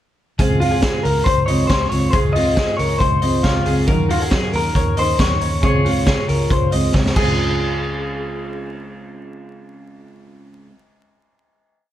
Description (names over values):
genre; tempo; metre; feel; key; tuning
jangly indie pop; 137 BPM; 4/4; straight; Db major; A4 = 441 Hz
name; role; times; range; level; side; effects
fingerpicked twelve-string acoustic guitar; accompaniment; 0.4-10.8 s; Db3 to Bb4; -24 LUFS; right 2 dB; none
electric guitar through a small old amp; arpeggios; 0.4-8.7 s; F4 to Eb5; -24 LUFS; left 1 dB; none
vintage muted fingered electric bass; bass; 0.4-10.7 s; Db2 to Eb2; -22 LUFS; equal; none
raw garage drum kit; drums; 0.4-7.3 s; crash cymbal, hi-hat, kick drum, snare drum; -20 LUFS; equal; none
electric guitar through a small old amp; melody; 0.6-10.7 s; F4 to Eb5; -22 LUFS; left 2 dB; digital delay
room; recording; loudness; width
light reverb; dark, warm production, vinyl crackle; -15 LUFS; side -12 dB against mid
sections
0.4-7.4 chorus; 7.4-10.9 final hit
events
drum fill 6.9-7.4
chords
0.4 Dbmaj7; 3.9 Ebm7; 5.6 Dbmaj7